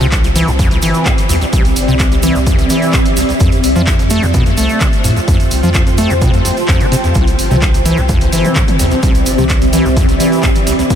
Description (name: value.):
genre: acid house.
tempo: 128 BPM.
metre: 4/4.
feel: straight.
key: C major.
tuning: A4 = 439 Hz.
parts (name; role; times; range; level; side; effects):
acid bass, square; riff; 0.0-11.0 s; C2 to A3; -16 LUFS; equal; overdrive, ping-pong delay.
saturated sub bass; bass; 0.0-11.0 s; G1 to A2; -16 LUFS; equal; sidechain pumping.
tube shaker; percussion; 0.0-11.0 s; none; -26 LUFS; right 4 dB; none.
granular cloud pad; texture; 0.0-11.0 s; C4 to A5; -16 LUFS; equal; built-in reverb, ensemble chorus, sidechain pumping.
electronic kick drum; drums; 0.1-11.0 s; none; -14 LUFS; equal; none.
punchy analog drum machine; drums; 0.1-11.0 s; handclaps, hi-hat, toms; -21 LUFS; equal; none.
room: moderate huge ambient reverb, RT60 8.0 s.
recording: dreamy mix soaked in reverb.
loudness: -10 LUFS.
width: side -9 dB against mid.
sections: 0.0-11.0 A section.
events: none.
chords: 0.0 Cadd9; 3.4 Fmaj9; 7.2 Cadd9.